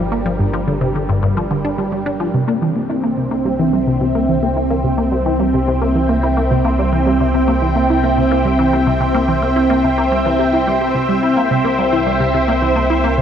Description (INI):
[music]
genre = ambient, sequencer-driven space music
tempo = 108 BPM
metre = 4/4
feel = straight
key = unclear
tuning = A4 = 440 Hz
[part]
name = lush unison pad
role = sustained chords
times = 0.0-13.2 s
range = G3 to G5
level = -16 LUFS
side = equal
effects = chorus, phaser, shimmer reverb
[part]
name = resonant blip pluck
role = riff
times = 0.0-13.2 s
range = G2 to G4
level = -18 LUFS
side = equal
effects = chorus, phaser, ping-pong delay
[part]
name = round analog bass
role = bass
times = 0.0-13.2 s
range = G1 to C2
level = -22 LUFS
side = equal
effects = none
[sound]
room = wet huge ambient reverb, RT60 7.0 s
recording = worn, warbling old tape, cassette tape, warbly pitch drift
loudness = -14 LUFS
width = side -8 dB against mid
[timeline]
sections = 0.0-13.2 A section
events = none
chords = 0.0 Gm; 2.3 C